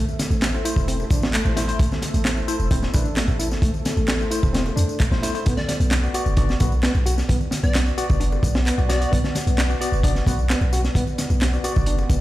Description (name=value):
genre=breakbeat, breaks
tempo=131 BPM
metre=4/4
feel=straight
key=unclear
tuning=A4 = 440 Hz
part: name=deep dark ambient pad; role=sustained chords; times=0.0-12.2 s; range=A3 to F#5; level=-32 LUFS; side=equal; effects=chorus, built-in reverb, sidechain pumping
part: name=reed electric piano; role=riff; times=0.0-12.1 s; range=A3 to F#4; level=-29 LUFS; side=equal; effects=fast tremolo, overdrive, ping-pong delay
part: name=warm 808-style bass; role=bass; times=0.0-12.2 s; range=E1 to E2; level=-22 LUFS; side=equal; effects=tube saturation
part: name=electronic tambourine and handclaps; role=drums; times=0.1-12.2 s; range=none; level=-31 LUFS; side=left 1 dB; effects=none
part: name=congas and bongos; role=percussion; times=0.1-12.1 s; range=none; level=-34 LUFS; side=left 2 dB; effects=none
part: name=crunchy breakbeat drum kit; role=drums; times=0.2-12.2 s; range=hi-hat, kick drum, snare drum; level=-23 LUFS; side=equal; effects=none
part: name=tine electric piano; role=stabs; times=0.5-12.2 s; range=A3 to D5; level=-30 LUFS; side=left 2 dB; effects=overdrive, fast stereo tremolo, vintage 12-bit sampler grit, ping-pong delay
part: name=plucky unison lead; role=melody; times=5.6-9.4 s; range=D5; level=-34 LUFS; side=equal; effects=small speaker sound, ping-pong delay
room=small room ambience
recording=played on a big sound system in a bare room, stone room reverb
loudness=-18 LUFS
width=side -16 dB against mid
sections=0.0-12.2 A section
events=none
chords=0.0 Am; 5.5 Bm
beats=0.42 0.88 1.34 | 1.79 2.25 2.71 3.17 | 3.63 4.08 4.54 5.00 | 5.46 5.92 6.38 6.83 | 7.29 7.75 8.21 8.67 | 9.12 9.58 10.04 10.50 | 10.96 11.41 11.87